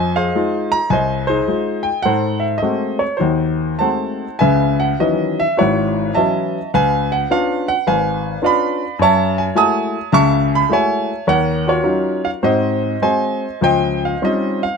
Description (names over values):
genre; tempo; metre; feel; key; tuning
solo jazz; 104 BPM; 4/4; swing 67% on 8ths, rubato; C# minor from 4.4 s; A4 = 445 Hz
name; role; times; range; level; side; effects
clear grand piano; solo; 0.0-14.8 s; G#1 to D#6; -15 LUFS; equal; none
room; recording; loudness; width
light reverb; close, detailed microphones; -15 LUFS; side -5 dB against mid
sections
0.0-4.4 A section; 4.4-14.8 B section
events
none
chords
0.0 Fm7; 2.0 Ab7b9; 4.4 C#m11; 6.7 C#7b9; 9.0 F#m9; 11.3 D#m9; 12.4 G#7; 13.6 C#maj9#11